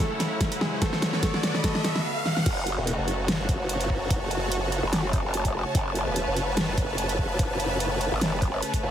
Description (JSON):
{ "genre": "heavy wobble dubstep", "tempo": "146 BPM", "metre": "4/4", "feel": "swing 54% on 16ths, half-time", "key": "F# minor", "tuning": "A4 = 436 Hz", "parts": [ { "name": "warm grand piano", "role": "melody", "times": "0.0-2.0 s", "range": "G#3 to A4", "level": "-32 LUFS", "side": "equal", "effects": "ping-pong delay" }, { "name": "supersaw pad", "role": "sustained chords", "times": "0.0-8.9 s", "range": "C#3 to B4", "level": "-32 LUFS", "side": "right 1 dB", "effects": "sidechain pumping" }, { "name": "dubstep drum kit", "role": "drums", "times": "0.0-8.8 s", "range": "crash cymbal, hi-hat, snare drum", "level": "-28 LUFS", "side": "equal", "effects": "overdrive" }, { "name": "riser", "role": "sound effects", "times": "0.0-2.5 s", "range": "none", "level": "-32 LUFS", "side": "right 1 dB", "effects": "none" }, { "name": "clear symphonic string section", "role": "texture", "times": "0.0-8.9 s", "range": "E4 to B5", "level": "-33 LUFS", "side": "left 1 dB", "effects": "sidechain pumping" }, { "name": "electronic kick drum", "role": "drums", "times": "0.4-8.8 s", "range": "none", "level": "-26 LUFS", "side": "equal", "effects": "none" }, { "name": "growl bass", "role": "bass", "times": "2.5-8.6 s", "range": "F#1 to G#1", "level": "-28 LUFS", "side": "equal", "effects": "chorus, overdrive" }, { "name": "formant-sweep wobble bass", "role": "bass", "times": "2.8-8.9 s", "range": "E1 to F#1", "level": "-28 LUFS", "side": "equal", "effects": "chorus, overdrive" } ], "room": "light reverb", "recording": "heavily compressed radio sound, multiband compression", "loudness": "-23 LUFS", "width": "side -10 dB against mid", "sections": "0.0-2.5 A section; 2.5-8.9 B section", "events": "build-up 0.0-2.5; drum fill 0.0-2.0, 2.3; riser 0.0-2.5; drop 2.5-8.9", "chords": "0.0 A; 0.8 Bm; 2.5 F#m" }